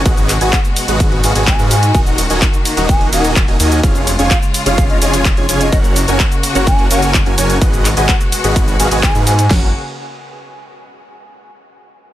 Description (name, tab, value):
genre	EDM, festival progressive house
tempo	127 BPM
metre	4/4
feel	straight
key	F# major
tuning	A4 = 440 Hz
part	rich symphonic string section	sustained chords	0.0-9.7 s	B2 to F#4	-22 LUFS	left 3 dB	sidechain pumping
part	dense compressed supersaw	riff	0.0-9.7 s	C#4 to G#5	-18 LUFS	right 1 dB	sidechain pumping, digital delay
part	wide detuned saw bass	bass	0.0-9.7 s	D#1 to G#2	-17 LUFS	equal	chorus, sidechain pumping
part	big-room dance drum kit	drums	0.1-9.6 s	crash cymbal, kick drum, snare drum	-14 LUFS	equal	overdrive, small room ambience
part	big-room dance drum kit	drums	0.1-9.5 s	handclaps, hi-hat, ride cymbal, shaker	-19 LUFS	equal	overdrive, small room ambience
part	mellow hollow concert flute	melody	0.4-9.5 s	D#5 to G#5	-23 LUFS	equal	digital delay
room	digital ambience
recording	none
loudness	-11 LUFS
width	side -13 dB against mid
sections	0.0-9.5 A section; 9.5-11.4 B section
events	drop 0.0-9.5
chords	0.1 G#m7; 1.9 D#m; 3.8 C#/E#; 5.7 F#; 7.6 G#m7; 9.5 F#